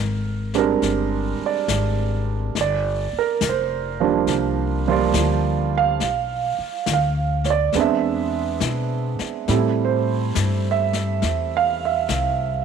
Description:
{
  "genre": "jazz ballad",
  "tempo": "69 BPM",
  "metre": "4/4",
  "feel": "swing 67% on 8ths",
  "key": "unclear",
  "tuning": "A4 = 440 Hz",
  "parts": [
    { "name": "warm baby grand piano", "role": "accompaniment", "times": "0.0-12.6 s", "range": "F3 to F5", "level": "-21 LUFS", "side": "right 10 dB", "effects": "none" },
    { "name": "upright bass", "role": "bass", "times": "0.0-12.6 s", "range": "F1 to B2", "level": "-24 LUFS", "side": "left 2 dB", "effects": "none" },
    { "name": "jazz brush drum kit", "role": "drums", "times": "0.5-12.6 s", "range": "brushed snare drum, hi-hat, snare drum", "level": "-30 LUFS", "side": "left 10 dB", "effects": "none" }
  ],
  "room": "light reverb, small room ambience",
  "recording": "1960s-style stereo with parts hard left and right",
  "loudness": "-19 LUFS",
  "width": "side -6 dB against mid",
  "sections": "0.0-12.6 A section",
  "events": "none",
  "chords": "0.0 Bb13; 2.5 Bb69/F; 6.0 Bdim; 7.8 E7b13; 9.5 Am7",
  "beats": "0.81 1.68 | 2.54 3.41 4.28 5.15 | 6.01 6.88 7.75 8.62 | 9.49 10.36 11.23 12.10"
}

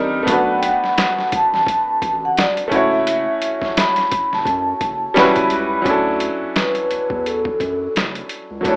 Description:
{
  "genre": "R&B, neo-soul",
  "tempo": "86 BPM",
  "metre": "4/4",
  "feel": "swing 58% on 16ths",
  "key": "D major",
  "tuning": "A4 = 440 Hz",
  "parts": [
    { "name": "bright concert grand piano", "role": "accompaniment", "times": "0.0-8.8 s", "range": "F#3 to C#5", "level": "-19 LUFS", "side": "equal", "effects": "none" },
    { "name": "round analog bass", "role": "bass", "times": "0.0-8.8 s", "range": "F#1 to F#2", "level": "-31 LUFS", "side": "equal", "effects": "none" },
    { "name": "vibraphone with soft mallets", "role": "melody", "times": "0.3-8.8 s", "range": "A4 to B5", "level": "-18 LUFS", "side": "equal", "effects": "none" },
    { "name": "boom bap sampler-style drum kit", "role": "drums", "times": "0.3-8.8 s", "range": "hi-hat, kick drum, snare drum", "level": "-21 LUFS", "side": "equal", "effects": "overdrive" }
  ],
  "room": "moderate studio reverb, RT60 0.5 s",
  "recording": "rough home demo mix, AM radio sound",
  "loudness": "-15 LUFS",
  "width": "side -30 dB against mid",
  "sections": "0.0-5.9 A section; 5.9-8.8 B section",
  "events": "vibraphone solo 5.9-8.8",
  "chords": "0.3 Bm7; 2.7 F#m7; 5.2 A13; 5.9 Dmaj9",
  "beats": "| 0.27 0.97 1.67 2.37 | 3.06 3.76 4.46 5.16 | 5.85 6.55 7.25 7.95 | 8.64"
}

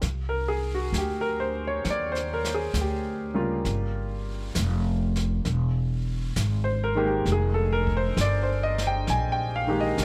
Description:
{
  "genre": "jazz ballad",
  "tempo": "66 BPM",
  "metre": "4/4",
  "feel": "swing 67% on 8ths",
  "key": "C minor",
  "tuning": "A4 = 440 Hz",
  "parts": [
    { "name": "clear concert grand piano", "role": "accompaniment", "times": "0.0-10.0 s", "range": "Db3 to Ab5", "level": "-29 LUFS", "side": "equal", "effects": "none" },
    { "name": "upright bass", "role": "bass", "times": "0.0-10.0 s", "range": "E1 to Eb2", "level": "-29 LUFS", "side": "equal", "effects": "none" },
    { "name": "jazz brush drum kit", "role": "drums", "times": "0.0-10.0 s", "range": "brushed snare drum, hi-hat, kick drum, snare drum", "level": "-38 LUFS", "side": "equal", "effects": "none" }
  ],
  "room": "little or no reverb",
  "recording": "close, detailed microphones",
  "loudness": "-26 LUFS",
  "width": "mono",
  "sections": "0.0-10.0 A section",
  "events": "none",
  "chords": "0.0 Cm9; 3.7 Gm7b5; 5.5 Emaj7#11; 7.3 Fm11",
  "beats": "| 0.01 0.93 1.84 2.75 | 3.65 4.56 5.46 6.36 | 7.26 8.17 9.08 9.98"
}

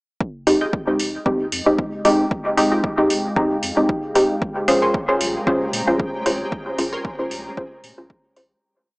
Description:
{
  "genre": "dub techno",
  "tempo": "114 BPM",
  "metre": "4/4",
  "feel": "swing 54% on 16ths",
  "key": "F minor",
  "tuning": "A4 = 439 Hz",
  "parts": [
    { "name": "deep dark ambient pad", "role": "sustained chords", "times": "1.2-8.6 s", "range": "Ab3 to Bb5", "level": "-30 LUFS", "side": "equal", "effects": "chorus, built-in reverb, sidechain pumping" },
    { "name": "electronic kick drum", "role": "drums", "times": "0.2-8.2 s", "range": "none", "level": "-26 LUFS", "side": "equal", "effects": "overdrive" },
    { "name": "filtered dub chord stab", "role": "stabs", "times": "0.5-8.6 s", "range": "Ab3 to C5", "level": "-18 LUFS", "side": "equal", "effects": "chorus, phaser, sidechain pumping, dub echo" },
    { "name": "pure sine sub bass", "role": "bass", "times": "0.5-8.5 s", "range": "Eb1 to Bb2", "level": "-39 LUFS", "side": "equal", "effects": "transformer saturation, sidechain pumping" },
    { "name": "electronic hi-hat", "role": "drums", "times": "0.5-8.5 s", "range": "none", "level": "-27 LUFS", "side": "equal", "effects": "none" },
    { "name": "filtered dub chord stab", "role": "riff", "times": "0.6-7.1 s", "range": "F4 to C6", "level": "-28 LUFS", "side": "equal", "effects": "phaser, analog chorus, sidechain pumping, dub echo" },
    { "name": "flickering grainy texture", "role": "texture", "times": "5.1-8.6 s", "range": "Ab3 to G4", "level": "-32 LUFS", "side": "equal", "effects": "built-in reverb, sidechain pumping" }
  ],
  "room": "light reverb",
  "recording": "dry, gritty hardware recording, small speaker sound",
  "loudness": "-18 LUFS",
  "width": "side -32 dB against mid",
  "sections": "0.2-8.6 groove",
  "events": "fade-out 5.8-8.6",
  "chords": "0.2 Fm9; 4.4 Bbm9",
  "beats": "| 0.21 0.73 1.26 1.78 | 2.31 2.84 3.36 3.89 | 4.42 4.94 5.47 6.00 | 6.52 7.05 7.58 8.10"
}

